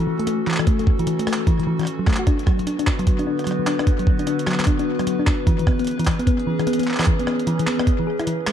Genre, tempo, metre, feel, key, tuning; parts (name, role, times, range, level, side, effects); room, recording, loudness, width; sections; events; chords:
IDM; 150 BPM; 4/4; swing 62% on 16ths; A4 = 440 Hz
warbly tape-like pad; sustained chords; 0.0-8.5 s; D3 to B4; -26 LUFS; left 1 dB; chorus, built-in reverb, phaser
thumb-piano-like synth pluck; arpeggios; 0.0-8.5 s; E3 to G#4; -22 LUFS; left 2 dB; chorus, ping-pong delay
jungle sampler-style drum kit; drums; 0.2-8.5 s; handclaps, hi-hat, rim click; -28 LUFS; right 1 dB; ping-pong delay
electronic kick drum; drums; 0.7-8.0 s; -19 LUFS; right 1 dB
moderate plate reverb, RT60 1.7 s, digital ambience; dark, warm production; -18 LUFS; side -9 dB against mid
0.0-8.5 A section
0.0 F#m7; 2.3 Bm; 5.5 E6